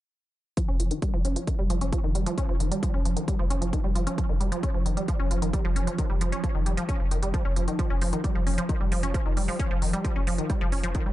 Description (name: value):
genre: driving peak-time techno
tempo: 133 BPM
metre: 4/4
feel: straight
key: unclear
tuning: A4 = 442 Hz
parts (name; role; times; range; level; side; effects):
- resonant blip pluck; riff; 0.6-11.1 s; Eb3 to Db4; -30 LUFS; equal; chorus, sidechain pumping, tape echo
- swarming drone; drone; 1.3-11.1 s; F3; -35 LUFS; right 2 dB; built-in reverb, sidechain pumping
- electronic hi-hat; drums; 0.6-11.0 s; none; -38 LUFS; right 2 dB; none
- electronic kick drum; drums; 0.6-11.0 s; none; -27 LUFS; equal; none
- warm sub bass; bass; 0.7-11.1 s; F1; -28 LUFS; equal; overdrive, sidechain pumping, low-pass filter
room: little or no reverb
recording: echo-heavy mix, nothing above 10.8 kHz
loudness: -24 LUFS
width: side -15 dB against mid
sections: 0.6-11.1 A section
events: none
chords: 0.6 F5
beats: | 0.57 1.02 1.48 1.93 | 2.38 2.83 3.28 3.73 | 4.18 4.63 5.08 5.54 | 5.99 6.44 6.89 7.34 | 7.79 8.24 8.69 9.14 | 9.60 10.05 10.50 10.95